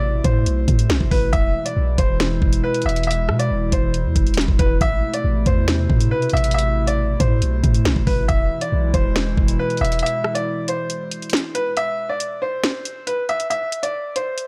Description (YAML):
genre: hip hop, drill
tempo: 138 BPM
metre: 4/4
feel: half-time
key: unclear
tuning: A4 = 437 Hz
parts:
  - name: bright upright piano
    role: melody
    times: 0.0-14.5 s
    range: B4 to E5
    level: -26 LUFS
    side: equal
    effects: none
  - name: hollow soft pad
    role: sustained chords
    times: 0.0-11.7 s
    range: B2 to E4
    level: -28 LUFS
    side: equal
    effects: chorus
  - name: long sustained 808-style bass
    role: bass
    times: 0.0-10.0 s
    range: E1 to B2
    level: -23 LUFS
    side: equal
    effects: none
  - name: drill drum kit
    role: drums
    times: 0.2-14.5 s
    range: hi-hat, kick drum, rim click, snare drum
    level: -22 LUFS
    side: equal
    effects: none
room: digital ambience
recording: none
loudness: -20 LUFS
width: mono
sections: 0.0-11.8 A section; 11.8-14.5 B section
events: break 10.0-11.8, 11.8-14.5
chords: 0.0 Amadd9; 1.3 E; 4.8 Amadd9; 8.3 E; 11.8 N.C.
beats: 0.03 0.46 0.90 | 1.33 1.77 2.20 2.64 | 3.07 3.51 3.94 4.38 | 4.81 5.25 5.68 6.11 | 6.55 6.98 7.42 7.85 | 8.29 8.72 9.16 9.59 | 10.03 10.46 10.90 11.33 | 11.77 12.20 12.64 13.07 | 13.51 13.94 14.38